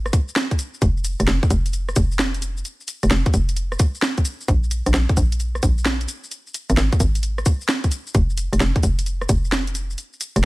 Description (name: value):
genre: UK garage, two-step garage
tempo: 131 BPM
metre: 4/4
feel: swing 67% on 16ths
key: F minor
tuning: A4 = 440 Hz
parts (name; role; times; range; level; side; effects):
- hollow knocking FM bass; bass; 0.0-10.4 s; F1 to Bb1; -20 LUFS; equal; tube saturation
- electronic kick drum; drums; 0.1-9.4 s; none; -18 LUFS; equal; overdrive
- garage drum kit; drums; 0.1-10.4 s; hi-hat, rim click, shaker, snare drum; -24 LUFS; right 1 dB; overdrive
room: digital ambience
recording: none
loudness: -18 LUFS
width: side -21 dB against mid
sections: 0.0-10.4 A section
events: none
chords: none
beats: 0.36 | 0.82 1.27 1.73 2.19 | 2.65 3.11 3.56 4.02 | 4.48 4.94 5.40 5.86 | 6.31 6.77 7.23 7.69 | 8.14 8.60 9.06 9.52 | 9.98